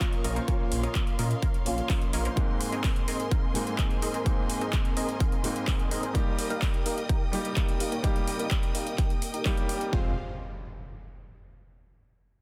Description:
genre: EDM, festival progressive house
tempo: 127 BPM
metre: 4/4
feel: straight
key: F minor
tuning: A4 = 440 Hz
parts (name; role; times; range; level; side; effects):
- dark baby grand piano; accompaniment; 0.0-10.1 s; Ab2 to G4; -36 LUFS; equal; sidechain pumping, delay
- dark studio string section; sustained chords; 0.0-10.1 s; Ab3 to Eb6; -40 LUFS; equal; sidechain pumping
- supersaw stab; riff; 0.0-10.1 s; Ab3 to G5; -38 LUFS; equal; sidechain pumping, low-pass filter, delay
- big-room dance drum kit; drums; 0.0-9.9 s; handclaps, hi-hat; -38 LUFS; equal; overdrive
- electronic kick drum; drums; 0.0-10.0 s; none; -30 LUFS; equal; overdrive
- detuned saw bass; bass; 0.2-2.3, 9.9-10.1 s; F1 to Bb2; -32 LUFS; equal; sidechain pumping
- impact; sound effects; 10.0-11.8 s; none; -44 LUFS; equal; none
room: light reverb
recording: dense, heavily limited modern master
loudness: -28 LUFS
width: mono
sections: 0.0-9.9 A section; 9.9-11.8 B section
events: filter sweep on supersaw synth 0.0-9.9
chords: 0.0 Bbm; 2.4 Abadd9; 6.1 Eb; 9.9 Fm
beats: 0.01 | 0.48 0.95 1.43 1.90 | 2.37 2.84 3.31 3.79 | 4.26 4.73 5.20 5.68 | 6.15 6.62 7.09 7.57 | 8.04 8.51 8.98 9.46 | 9.93 10.40 10.87 11.35

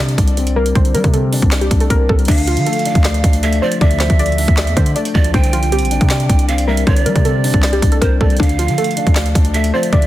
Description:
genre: hip hop, trap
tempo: 157 BPM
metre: 4/4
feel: half-time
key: D minor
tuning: A4 = 440 Hz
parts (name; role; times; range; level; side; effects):
- warbly dusty pluck; melody; 0.0-10.1 s; D4 to D5; -21 LUFS; equal; chorus, tape echo
- felt-muted upright piano; accompaniment; 0.0-10.1 s; D3 to D5; -20 LUFS; left 4 dB; none
- hard-hitting 808-style bass; bass; 0.0-10.1 s; Bb1 to G3; -17 LUFS; equal; none
- trap drum kit; drums; 0.1-10.1 s; crash cymbal, handclaps, hi-hat, kick drum, snare drum; -15 LUFS; equal; none
- breathy large pan pipes; second line; 2.3-10.1 s; C5 to G5; -22 LUFS; right 7 dB; tape echo
room: digital ambience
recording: dense, heavily limited modern master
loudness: -12 LUFS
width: side -14 dB against mid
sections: 0.0-2.3 A section; 2.3-10.1 B section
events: none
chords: 0.0 Csus2; 2.3 Dm; 5.3 Csus2; 8.4 Dm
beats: 0.37 | 0.75 1.14 1.52 1.90 | 2.28 2.67 3.05 3.43 | 3.81 4.19 4.58 4.96 | 5.34 5.72 6.10 6.49 | 6.87 7.25 7.63 8.02 | 8.40 8.78 9.16 9.54 | 9.93

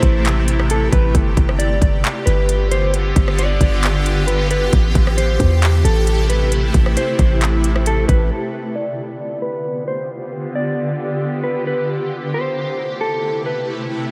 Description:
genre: hip hop, atmospheric cloud-rap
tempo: 134 BPM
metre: 4/4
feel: half-time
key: unclear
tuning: A4 = 441 Hz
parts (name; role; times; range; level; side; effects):
- mellow electric guitar; melody; 0.0-13.7 s; A4 to D5; -25 LUFS; equal; low-pass filter, tape echo
- granular cloud pad; sustained chords; 0.0-14.1 s; C3 to G4; -25 LUFS; equal; built-in reverb, sidechain pumping, low-pass filter
- warm 808-style bass; bass; 0.0-8.3 s; G1 to E2; -19 LUFS; equal; none
- trap drum kit; drums; 0.0-8.2 s; handclaps, hi-hat, kick drum, rim click; -20 LUFS; equal; none
- riser; sound effects; 13.7-14.1 s; none; barely audible; none; none
room: light reverb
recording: none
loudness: -18 LUFS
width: mono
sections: 0.0-8.3 A section; 8.3-14.1 B section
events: filter sweep 8.3-14.1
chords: 0.0 Am7; 1.1 G7; 4.7 Am7; 8.3 G7; 11.9 Am7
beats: 0.25 0.70 | 1.15 1.59 2.04 2.49 | 2.94 3.38 3.83 4.28 | 4.73 5.18 5.62 6.07 | 6.52 6.97 7.42 7.86 | 8.31 8.76 9.21 9.65 | 10.10 10.55 11.00 11.45 | 11.89 12.34 12.79 13.24 | 13.68

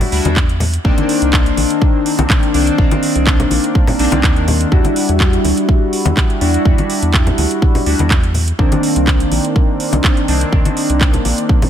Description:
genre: deep house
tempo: 124 BPM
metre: 4/4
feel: swing 53% on 16ths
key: unclear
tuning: A4 = 440 Hz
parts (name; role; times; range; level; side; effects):
- chorused polysynth; stabs; 0.0-11.7 s; Eb3 to F#4; -16 LUFS; left 1 dB; sidechain pumping, dub echo
- house drum kit; drums; 0.0-11.7 s; handclaps, hi-hat; -21 LUFS; right 2 dB; none
- congas; percussion; 0.0-11.7 s; none; -21 LUFS; left 4 dB; sidechain pumping on perc
- rubbery square bass; bass; 0.1-11.3 s; Bb1 to E2; -17 LUFS; equal; none
- electronic kick drum; drums; 0.4-11.6 s; none; -14 LUFS; equal; none
room: little or no reverb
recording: none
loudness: -11 LUFS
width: side -9 dB against mid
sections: 0.0-11.7 A section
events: none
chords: 0.0 Em9; 0.8 Cm9; 4.7 Em9; 8.6 Cm9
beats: 0.36 | 0.85 1.33 1.82 2.30 | 2.78 3.27 3.75 4.24 | 4.72 5.20 5.69 6.17 | 6.66 7.14 7.62 8.11 | 8.59 9.07 9.56 10.04 | 10.53 11.01 11.49

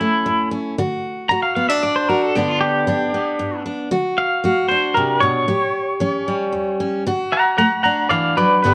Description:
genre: country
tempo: 115 BPM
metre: 3/4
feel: straight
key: unclear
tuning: A4 = 442 Hz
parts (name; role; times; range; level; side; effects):
- twangy electric guitar; melody; 0.0-8.7 s; E4 to Bb5; -20 LUFS; equal; tremolo
- picked steel-string acoustic guitar; accompaniment; 0.0-8.7 s; E2 to G4; -22 LUFS; equal; none
room: moderate studio reverb, RT60 0.9 s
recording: worn, warbling old tape, cassette tape, warbly pitch drift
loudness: -19 LUFS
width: mono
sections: 0.0-8.6 A section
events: clean electric guitar solo 0.0-8.6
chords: 0.0 A; 0.8 D; 2.3 G; 3.9 D; 5.5 A7; 7.1 D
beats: 0.25 | 0.77 1.30 1.82 | 2.34 2.87 3.39 | 3.91 4.44 4.96 | 5.48 6.01 6.53 | 7.05 7.58 8.10 | 8.62

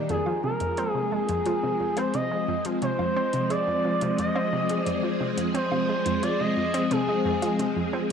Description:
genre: ambient, sequencer-driven space music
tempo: 88 BPM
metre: 4/4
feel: straight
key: F dorian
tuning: A4 = 440 Hz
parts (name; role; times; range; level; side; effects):
- phased string machine; sustained chords; 0.0-8.1 s; F3 to Ab4; -27 LUFS; equal; ensemble chorus, phaser
- expressive portamento lead; melody; 0.1-7.9 s; Ab4 to Eb5; -27 LUFS; equal; chorus, tape echo
- analog pluck; riff; 0.1-8.1 s; F2 to C4; -30 LUFS; equal; chorus, tape echo
- electronic hi-hat and woodblock; percussion; 0.1-7.7 s; none; -38 LUFS; right 4 dB; none
room: wet plate reverb, RT60 2.8 s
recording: none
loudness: -23 LUFS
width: side -7 dB against mid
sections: 0.0-8.1 A section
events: none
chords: 0.1 Fm7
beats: | 0.09 0.78 1.46 2.14 | 2.82 3.50 4.18 4.87 | 5.55 6.23 6.91 7.59

